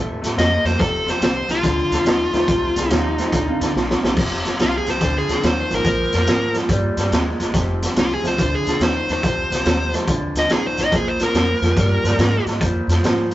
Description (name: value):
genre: electric blues shuffle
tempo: 142 BPM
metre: 4/4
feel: swing 65% on 8ths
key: unclear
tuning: A4 = 437 Hz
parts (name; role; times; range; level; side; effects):
- electric guitar through a small old amp; riff; 0.0-13.3 s; F2 to Bb3; -25 LUFS; left 1 dB; none
- upright bass; bass; 0.0-13.3 s; F1 to A2; -24 LUFS; equal; none
- raw garage drum kit; drums; 0.2-13.3 s; crash cymbal, hi-hat, kick drum, snare drum; -20 LUFS; equal; none
- dark smooth lead guitar; melody; 0.4-12.4 s; F4 to Eb5; -21 LUFS; left 1 dB; overdrive
- warm upright piano; second line; 2.1-4.1 s; C4 to Eb5; -29 LUFS; right 4 dB; none
- dark grand piano; accompaniment; 2.3-13.3 s; F3 to G4; -28 LUFS; right 2 dB; none
room: light reverb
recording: rough rehearsal-room recording, tube saturation, nothing above 7.9 kHz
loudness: -16 LUFS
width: side -15 dB against mid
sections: 0.0-4.2 A section; 4.2-13.3 B section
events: drum fill 3.7-4.2; lead electric guitar solo 4.2-13.3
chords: 0.0 C7(no3); 0.8 F7; 4.2 F7(no3); 5.9 Bb7; 7.5 F7; 10.9 Bb7